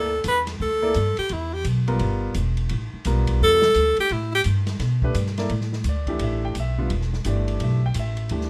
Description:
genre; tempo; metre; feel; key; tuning
modal jazz; 171 BPM; 4/4; swing 65% on 8ths; unclear; A4 = 440 Hz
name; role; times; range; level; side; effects
breathy tenor saxophone; melody; 0.0-4.4 s; E4 to B4; -22 LUFS; equal; none
warm grand piano; accompaniment; 0.0-8.5 s; D3 to G5; -31 LUFS; equal; none
upright bass; bass; 0.0-8.5 s; E1 to B2; -26 LUFS; equal; none
open jazz drum kit; drums; 0.2-8.5 s; hi-hat, kick drum, ride cymbal, snare drum; -37 LUFS; equal; none
room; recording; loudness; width
moderate studio ambience, RT60 0.5 s; none; -23 LUFS; mono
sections
0.0-5.5 A section; 5.5-8.5 A section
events
tenor saxophone solo 0.0-5.5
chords
0.0 A9sus4

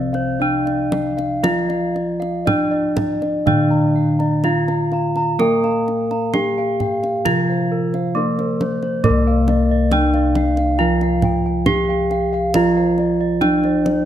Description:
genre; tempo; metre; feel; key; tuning
Javanese gamelan; 58-68 BPM; 4/4; straight; unclear; A4 = 441 Hz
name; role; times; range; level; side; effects
gamelan-type bronze metallophone; melody; 0.0-14.1 s; Bb3-40c to Bb4-40c; -20 LUFS; equal; none
gamelan-type bronze metallophone; accompaniment; 0.0-14.1 s; C3 to Bb3-40c; -23 LUFS; equal; none
gamelan-type bronze metallophone; arpeggios; 0.0-14.1 s; Bb4-40c to Bb5-40c; -26 LUFS; right 5 dB; none
gamelan-type bossed gongs; bass; 0.0-14.1 s; C2 to Bb4-40c; -23 LUFS; left 1 dB; none
gamelan-type bossed gongs; arpeggios; 0.1-14.1 s; Bb4-40c to Bb5-40c; -27 LUFS; left 4 dB; none
kendang; percussion; 0.1-14.1 s; none; -24 LUFS; right 2 dB; none
room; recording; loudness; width
moderate concert hall reverb, RT60 1.8 s; close, detailed microphones; -16 LUFS; side -10 dB against mid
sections
0.0-9.0 A section; 9.0-14.1 B section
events
none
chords
none

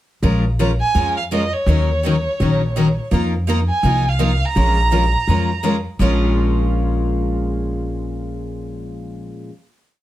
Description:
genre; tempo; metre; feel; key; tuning
acoustic string swing (jazz manouche); 166 BPM; 4/4; swing 61% on 8ths; Bb minor; A4 = 440 Hz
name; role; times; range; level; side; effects
picked steel-string acoustic guitar; accompaniment; 0.2-9.5 s; Bb2 to Bb4; -21 LUFS; left 3 dB; none
picked steel-string acoustic guitar; accompaniment; 0.2-9.5 s; Bb2 to Bb4; -26 LUFS; right 5 dB; none
upright bass; bass; 0.2-9.3 s; Bb1 to F2; -19 LUFS; equal; none
warm violin; melody; 0.8-5.7 s; Db5 to Bb5; -21 LUFS; right 2 dB; none
room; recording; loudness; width
light reverb; none; -16 LUFS; side -14 dB against mid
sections
0.2-6.0 A section; 6.0-8.9 final chord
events
none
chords
0.2 Bbm7; 1.7 Ebm7; 3.1 F7sus4; 4.6 Bbm7

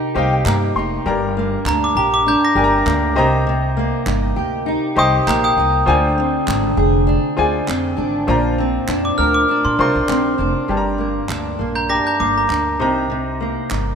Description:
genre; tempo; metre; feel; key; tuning
acoustic pop; 100 BPM; 4/4; swing 55% on 16ths; C minor; A4 = 440 Hz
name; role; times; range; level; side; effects
clear baby grand piano; accompaniment; 0.0-13.9 s; Eb4 to C6; -22 LUFS; left 3 dB; none
fingerpicked steel-string acoustic guitar; accompaniment; 0.0-13.9 s; G2 to Bb4; -20 LUFS; equal; double-tracked left and right
upright bass; bass; 0.2-13.9 s; F1 to Bb2; -22 LUFS; equal; none
group handclap; percussion; 0.5-13.9 s; none; -30 LUFS; right 3 dB; none
glockenspiel with hard plastic mallets; second line; 1.7-12.8 s; G5 to Bb6; -20 LUFS; equal; none
room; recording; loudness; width
moderate lush hall reverb, RT60 2.7 s; rough home demo mix; -15 LUFS; side -6 dB against mid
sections
0.0-10.7 A section; 10.7-13.9 B section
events
grand piano fill 0.0-1.1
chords
0.0 Cm7; 1.1 Gm; 3.2 Cm7; 5.9 Dm7b5; 8.3 Bbadd9; 10.7 Gm; 12.8 Cm7

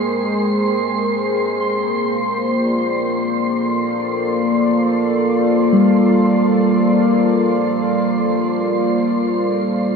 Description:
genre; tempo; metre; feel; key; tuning
ambient; free time; none; none; Bb major; A4 = 441 Hz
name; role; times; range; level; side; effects
warm analog pad; sustained chords; 0.0-10.0 s; Ab3 to G5; -16 LUFS; left 1 dB; chorus, shimmer reverb
muted felt-like synth keys; arpeggios; 0.0-10.0 s; G3 to C6; -21 LUFS; equal; chorus, tape echo, shimmer reverb
wind-like tuned noise texture; texture; 0.0-10.0 s; C6; -26 LUFS; right 2 dB; built-in reverb, shimmer reverb
room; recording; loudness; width
wet huge ambient reverb, RT60 7.7 s; dark, warm production; -15 LUFS; side -5 dB against mid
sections
0.0-10.0 A section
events
none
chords
0.0 Abmaj7; 1.8 Bbmaj7

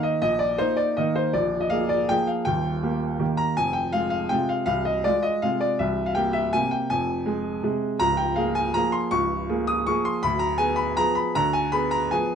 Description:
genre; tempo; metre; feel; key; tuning
classical, piano waltz; 162 BPM; 3/4; uneven beats, rubato; unclear; A4 = 441 Hz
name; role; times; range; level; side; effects
bright baby grand piano; solo; 0.0-12.3 s; Bb0 to Eb6; -21 LUFS; equal; none
room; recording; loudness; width
moderate large studio reverb, RT60 1.1 s; dark, warm production; -21 LUFS; side -7 dB against mid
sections
0.0-12.3 A section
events
none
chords
0.0 Eb5; 1.3 Bb5; 2.5 Eb; 3.6 Fm; 5.8 C5; 6.9 Fm; 8.0 Bbm7/Db; 10.2 Ddim7

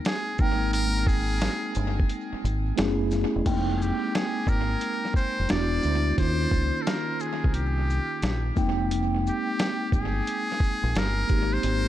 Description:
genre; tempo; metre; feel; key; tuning
hip hop, jazz-hop; 88 BPM; 4/4; swing 66% on 16ths; F minor; A4 = 440 Hz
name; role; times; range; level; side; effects
mellow tine electric piano; accompaniment; 0.0-11.9 s; Eb3 to G5; -29 LUFS; equal; medium stereo tremolo, tape echo
trumpet with metal mute; melody; 0.1-11.9 s; G4 to D5; -30 LUFS; equal; tape echo
lo-fi sampler-style drum kit; drums; 0.1-11.8 s; crash cymbal, hi-hat, kick drum, shaker, snare drum; -28 LUFS; equal; tape echo
deep dub fingered electric bass; bass; 0.4-11.9 s; Fb1 to Eb2; -27 LUFS; equal; none
room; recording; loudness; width
digital ambience; echo-heavy mix; -23 LUFS; side -12 dB against mid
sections
0.0-3.5 A section; 3.5-11.9 B section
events
muted trumpet solo 0.0-3.5; kick muted 11.6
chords
0.4 Abmaj7; 2.8 Gbm11; 3.5 Fm11; 5.5 E9; 6.2 Eb7; 8.6 Fm11; 11.3 Abmaj7

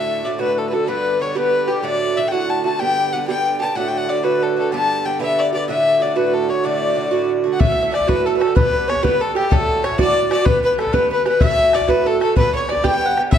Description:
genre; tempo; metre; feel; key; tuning
celtic folk, Celtic jig; 125 BPM (dotted quarters); 6/8; straight; D major; A4 = 440 Hz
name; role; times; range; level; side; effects
bright fiddle; melody; 0.0-13.4 s; G4 to A5; -19 LUFS; left 3 dB; none
bright baroque flute; second line; 0.0-13.4 s; G4 to A5; -24 LUFS; left 3 dB; none
Irish bouzouki; accompaniment; 0.0-13.4 s; G2 to G4; -21 LUFS; right 7 dB; none
accordion; drone; 0.0-7.6 s; D3; -29 LUFS; left 1 dB; none
mandolin; second line; 7.6-13.4 s; G4 to G5; -25 LUFS; right 5 dB; none
bodhran; percussion; 7.6-13.4 s; none; -20 LUFS; left 2 dB; none
room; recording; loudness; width
moderate recital hall reverb, RT60 1.5 s; dark, warm production; -15 LUFS; side -9 dB against mid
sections
0.0-7.6 A section; 7.6-13.4 A section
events
none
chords
0.0 D; 0.9 G; 1.8 D; 2.8 G; 3.8 D; 4.7 G; 5.7 D; 8.6 G; 9.5 D; 10.5 G; 11.4 D; 12.4 G

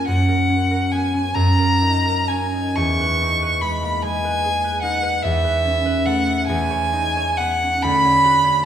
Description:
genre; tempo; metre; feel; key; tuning
classical, impressionist duo for violin and harp; 40-51 BPM (dotted quarters); 6/8; rubato; unclear; A4 = 440 Hz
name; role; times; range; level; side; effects
rich violin; melody; 0.0-8.7 s; E5 to C#6; -19 LUFS; right 1 dB; none
concert harp; accompaniment; 0.0-8.7 s; D2 to C#5; -20 LUFS; equal; none
room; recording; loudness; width
wet recital hall reverb, RT60 1.6 s; heard from further back in the room; -17 LUFS; side -9 dB against mid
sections
0.0-8.7 A section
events
none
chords
0.1 Bsus2/F#; 1.4 D#m7/F#; 2.8 Emaj7; 5.2 Amaj9/E; 6.5 C#m9/E; 7.8 Dmaj7

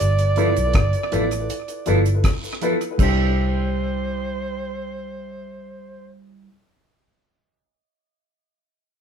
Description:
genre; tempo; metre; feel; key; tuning
lovers rock reggae; 80 BPM; 4/4; straight; C major; A4 = 441 Hz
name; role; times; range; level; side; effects
warm alto saxophone; melody; 0.0-6.1 s; C5 to D5; -28 LUFS; right 3 dB; none
vintage muted fingered electric bass; bass; 0.0-6.1 s; G1 to C2; -22 LUFS; equal; none
cabasa and guiro; percussion; 0.0-3.3 s; none; -38 LUFS; right 2 dB; none
deep reggae drum kit; drums; 0.2-3.2 s; crash cymbal, hi-hat, kick drum, rim click; -22 LUFS; equal; tape echo
dark baby grand piano; accompaniment; 0.4-6.1 s; D4 to C5; -25 LUFS; left 2 dB; tape echo
electric guitar with an envelope filter; stabs; 0.4-6.5 s; F3 to A4; -27 LUFS; right 4 dB; warbly pitch drift
room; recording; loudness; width
moderate studio ambience, RT60 0.5 s; band playing live in one room; -19 LUFS; side -7 dB against mid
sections
0.0-3.0 A section; 3.0-6.0 B section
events
none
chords
0.0 G13; 3.0 C

